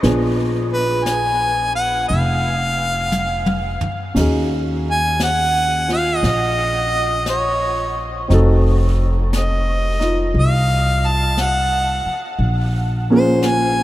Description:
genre	jazz ballad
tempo	58 BPM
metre	4/4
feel	swing 68% on 8ths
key	Bb minor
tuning	A4 = 439 Hz
part	clear concert grand piano	accompaniment	0.0-13.8 s	F3 to A4	-22 LUFS	equal	none
part	upright bass	bass	0.0-13.8 s	F1 to Eb2	-19 LUFS	equal	none
part	jazz brush drum kit	drums	0.0-13.8 s	brushed snare drum, hi-hat, kick drum, ride cymbal, snare drum, toms	-28 LUFS	left 1 dB	none
part	clear harmonica	melody	0.7-13.8 s	Cb5 to A5	-19 LUFS	equal	none
room	moderate huge ambient reverb, RT60 8.6 s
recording	in a vast, echoing space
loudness	-15 LUFS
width	side -15 dB against mid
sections	0.0-13.8 A section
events	drum fill 3.1-4.2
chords	0.0 Bb7b9; 4.2 Ebm11; 8.3 F7b9; 12.4 Bbm7

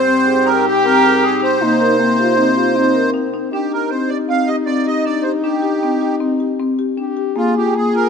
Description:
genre	contemporary instrumental, chamber music in an uneven meter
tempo	156 BPM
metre	5/4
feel	straight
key	C minor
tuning	A4 = 441 Hz
part	accordion	melody	0.0-8.1 s	F4 to F5	-17 LUFS	right 5 dB	light tremolo tuning
part	clear French horn	second line	0.0-8.1 s	C4 to Ab4	-20 LUFS	left 3 dB	none
part	mellow woodwind section	sustained chords	0.0-3.5 s	Ab2 to Eb4	-24 LUFS	right 3 dB	none
part	marimba with medium mallets	arpeggios	0.1-8.1 s	Bb3 to Bb4	-18 LUFS	left 4 dB	none
room	moderate plate reverb, RT60 2.6 s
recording	minimal, uncompressed stereo recording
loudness	-14 LUFS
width	side -6 dB against mid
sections	0.0-3.5 A section; 3.5-8.1 B section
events	none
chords	0.0 Abmaj7; 1.6 Cm7; 3.5 Cmadd9; 7.4 Bb7(no3)

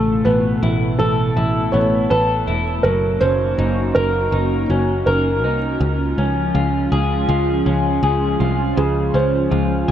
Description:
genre	dream pop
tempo	81 BPM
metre	4/4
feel	straight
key	unclear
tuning	A4 = 440 Hz
part	felt-muted upright piano	melody	0.0-9.9 s	Gb4 to Db5	-21 LUFS	right 2 dB	tape echo
part	hollow soft pad	sustained chords	0.0-9.9 s	B2 to A4	-22 LUFS	equal	ensemble chorus
part	electric guitar through a small old amp	arpeggios	0.0-9.9 s	Db3 to Bb4	-22 LUFS	left 2 dB	wide subtle chorus, tape echo
part	picked electric bass	bass	0.0-9.9 s	E1 to Db2	-20 LUFS	equal	none
room	moderate huge ambient reverb, RT60 5.0 s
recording	none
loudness	-15 LUFS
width	side -10 dB against mid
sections	0.0-9.9 A section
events	none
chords	0.0 Asus2; 2.8 Gb6; 5.8 Db

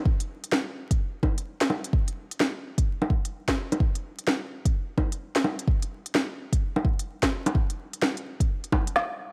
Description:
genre	future garage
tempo	128 BPM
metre	4/4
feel	swing 63% on 16ths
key	none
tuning	none
part	electronic kick drum	drums	0.1-8.8 s	none	-27 LUFS	equal	none
part	organic electronic drum kit	drums	0.2-9.1 s	bongos, hi-hat, snare drum	-29 LUFS	equal	none
room	light reverb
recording	vinyl crackle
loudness	-27 LUFS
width	mono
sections	0.0-9.3 A section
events	drum fill 9.0-9.3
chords	none

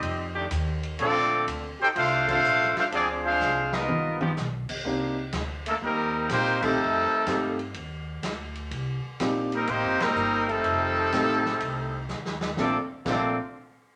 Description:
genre	jazz, big band swing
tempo	124 BPM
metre	4/4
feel	swing 68% on 8ths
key	Bb major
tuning	A4 = 441 Hz
part	clear trumpet section	melody	0.0-13.4 s	G3 to G5	-26 LUFS	equal	none
part	dark trombone section	second line	0.0-13.4 s	Bb2 to G4	-35 LUFS	equal	none
part	upright bass	bass	0.0-13.4 s	Eb1 to Bb2	-37 LUFS	equal	none
part	swinging big-band drum kit	drums	0.0-13.2 s	crash cymbal, hi-hat, kick drum, ride cymbal, snare drum, toms	-37 LUFS	equal	none
part	bright trombone section	sustained chords	0.4-4.3 s	Bb2 to A4	-35 LUFS	equal	none
part	warm concert grand piano	accompaniment	4.8-13.4 s	A3 to A4	-31 LUFS	equal	none
room	wet studio reverb, RT60 0.7 s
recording	none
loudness	-26 LUFS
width	mono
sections	0.0-4.9 A section; 4.9-12.6 B section; 12.6-14.0 C section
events	band accent 2.2, 6.5, 9.9; drum fill 3.4-4.4, 12.1-12.6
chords	0.0 F7sus2; 1.0 Bbmaj9; 2.9 Dm7b5; 3.9 G7alt; 4.9 Cm7; 6.8 F9; 8.7 Cm7; 10.6 F9; 12.6 Bbmaj9

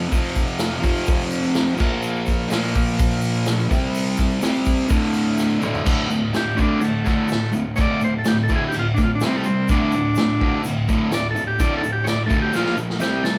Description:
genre	garage rock duo or trio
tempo	126 BPM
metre	4/4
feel	straight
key	D minor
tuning	A4 = 440 Hz
part	fuzz guitar	riff	0.0-13.4 s	D2 to C4	-23 LUFS	equal	distortion
part	vintage drum kit	drums	0.1-13.4 s	crash cymbal, hi-hat, kick drum, snare drum, toms	-25 LUFS	equal	none
part	tube shaker	percussion	0.1-13.4 s	none	-45 LUFS	equal	none
part	overdriven combo organ	melody	6.4-13.4 s	G#3 to D5	-26 LUFS	equal	none
room	light reverb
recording	band playing live in one room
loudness	-20 LUFS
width	mono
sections	0.0-5.9 A section; 5.9-13.4 B section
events	drum fill 5.4-5.9, 12.5-13.4; transistor combo organ solo 5.9-13.4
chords	0.0 F5; 1.8 Bb5; 3.7 C5; 4.9 D5; 9.2 C5; 9.7 D5; 12.5 Bb5

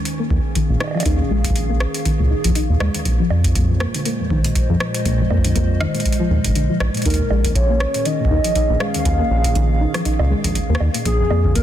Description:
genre	IDM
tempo	120 BPM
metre	4/4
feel	swing 56% on 16ths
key	unclear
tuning	A4 = 439 Hz
part	warbly tape-like pad	sustained chords	0.0-11.6 s	Bb2 to F5	-26 LUFS	right 1 dB	chorus, built-in reverb
part	electro analog drum machine	drums	0.1-11.6 s	bongos, hi-hat, rim click	-26 LUFS	right 1 dB	soft clipping on snare, small room ambience, tape echo
part	soft round pluck	arpeggios	0.2-11.6 s	Eb2 to Eb4	-23 LUFS	left 3 dB	wide subtle chorus, ping-pong delay
part	round analog bass	bass	0.3-11.6 s	Ab1 to F2	-18 LUFS	equal	none
part	electronic kick drum	drums	0.3-11.6 s	none	-21 LUFS	equal	small room ambience
part	warbly nostalgic lead	melody	7.1-11.6 s	Ab4 to F5	-23 LUFS	right 1 dB	wide subtle chorus, tape echo
room	digital ambience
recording	dense, heavily limited modern master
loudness	-16 LUFS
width	side -11 dB against mid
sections	0.0-11.6 A section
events	none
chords	0.0 Eb9sus4; 3.1 Bb9sus4; 7.1 Eb9sus4; 11.1 Bb7(no3)

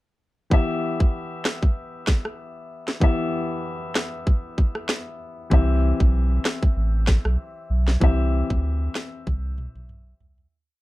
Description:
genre	dancehall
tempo	96 BPM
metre	4/4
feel	swing 56% on 16ths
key	E minor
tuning	A4 = 440 Hz
part	warm grand piano	accompaniment	0.5-10.5 s	E3 to E5	-28 LUFS	left 3 dB	none
part	island pop drum kit	drums	0.5-10.5 s	kick drum, rim click, snare drum, toms	-20 LUFS	equal	none
part	warm sub bass	bass	5.5-10.5 s	A1 to D2	-21 LUFS	equal	none
room	little or no reverb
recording	dark, warm production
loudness	-20 LUFS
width	side -18 dB against mid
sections	0.5-10.5 verse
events	fade-out 8.0-10.5; drum fill 9.3-10.5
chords	0.5 Em; 5.5 C

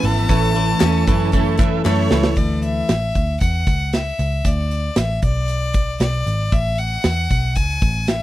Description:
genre	jangly indie pop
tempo	116 BPM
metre	4/4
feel	straight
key	unclear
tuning	A4 = 444 Hz
part	bright violin	melody	0.0-8.2 s	C#5 to A5	-24 LUFS	left 3 dB	none
part	overdriven combo organ	accompaniment	0.0-2.3 s	E4 to E5	-25 LUFS	right 20 dB	none
part	picked twelve-string acoustic guitar	accompaniment	0.0-2.4 s	A3 to C#5	-25 LUFS	right 8 dB	none
part	hollow soft pad	sustained chords	0.0-2.4 s	E3 to C#4	-29 LUFS	right 5 dB	none
part	twelve-string electric guitar	arpeggios	0.0-2.9 s	E3 to C#4	-22 LUFS	left 4 dB	none
part	vintage muted picked electric bass	bass	0.0-8.2 s	G#1 to F#2	-20 LUFS	equal	none
part	big rock drum kit	drums	0.0-8.2 s	hi-hat, kick drum, snare drum	-20 LUFS	equal	none
part	group handclap	percussion	0.8-2.0 s	none	-33 LUFS	left 11 dB	none
room	little or no reverb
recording	dry, close 1970s-style studio recording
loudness	-16 LUFS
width	side -15 dB against mid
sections	0.0-2.4 A section; 2.4-8.2 B section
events	drum fill 1.9-2.4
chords	0.3 A; 2.4 Dsus2; 6.5 Amaj7

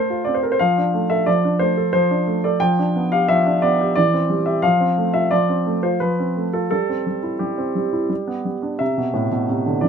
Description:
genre	classical-period piano sonatina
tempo	88 BPM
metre	3/4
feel	rubato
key	C major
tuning	A4 = 444 Hz
part	clear baby grand piano	solo	0.0-9.9 s	A2 to G5	-17 LUFS	equal	none
room	little or no reverb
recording	close, detailed microphones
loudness	-17 LUFS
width	side -7 dB against mid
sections	0.0-8.8 A section; 8.8-9.9 B section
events	none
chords	0.0 F/A; 0.6 Dm/F; 2.6 G7/F; 4.0 C/E; 4.6 F; 6.7 C/G; 8.1 G; 8.8 C

